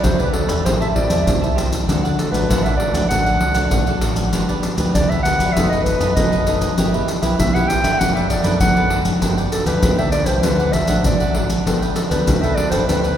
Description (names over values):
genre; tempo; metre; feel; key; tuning
samba and choro; 98 BPM; 4/4; straight; G major; A4 = 440 Hz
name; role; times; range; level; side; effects
dark clarinet; melody; 0.0-13.2 s; A4 to G5; -21 LUFS; equal; none
cavaquinho; accompaniment; 0.0-13.2 s; D4 to A5; -27 LUFS; right 4 dB; none
nylon-string guitar; accompaniment; 0.0-13.2 s; G2 to A4; -26 LUFS; left 2 dB; none
deep dub fingered electric bass; bass; 0.0-13.1 s; F#1 to F#2; -24 LUFS; equal; none
maracas, surdo and pandeiro; percussion; 0.0-13.2 s; none; -18 LUFS; equal; none
room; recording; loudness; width
wet church reverb, RT60 3.8 s; recorded in a church or concert hall; -15 LUFS; side -10 dB against mid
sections
0.0-13.2 A section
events
none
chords
0.0 Gmaj7; 0.7 Am7; 1.9 D; 4.3 G; 5.6 B7/F#; 6.8 Em/G; 8.0 Bm7/F#; 9.2 Gsus2; 10.4 D; 11.7 Gadd9